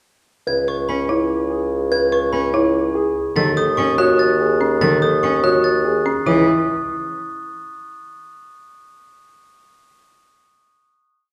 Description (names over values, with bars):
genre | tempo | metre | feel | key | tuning
classical, minimalist pattern music | 290 BPM (eighths) | 7/8 | straight | C# minor | A4 = 437 Hz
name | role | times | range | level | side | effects
dark grand piano | melody | 0.5-6.5 s | G#4 to C#5 | -25 LUFS | equal | none
glockenspiel with hard plastic mallets | arpeggios | 0.5-6.5 s | B5 to A6 | -26 LUFS | equal | none
mellow bassoon | bass | 0.5-6.5 s | C#2 to D#2 | -23 LUFS | equal | none
folk marimba with hard mallets | arpeggios | 0.7-6.5 s | C#4 to B4 | -24 LUFS | equal | none
rich cello | accompaniment | 0.9-6.5 s | D#3 to C#4 | -25 LUFS | equal | none
room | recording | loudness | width
wet recital hall reverb, RT60 1.6 s | heard from further back in the room | -18 LUFS | mono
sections
0.5-6.3 A section; 6.3-7.7 final chord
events
none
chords
0.5 C#m7; 3.4 D#m7b5; 6.3 C#m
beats
| 0.47 0.68 0.89 1.09 1.30 1.51 1.71 | 1.92 2.13 2.33 2.54 2.75 2.96 3.16 | 3.37 3.58 3.78 3.99 4.20 4.40 4.61 | 4.82 5.03 5.23 5.44 5.64 5.85 6.06 | 6.27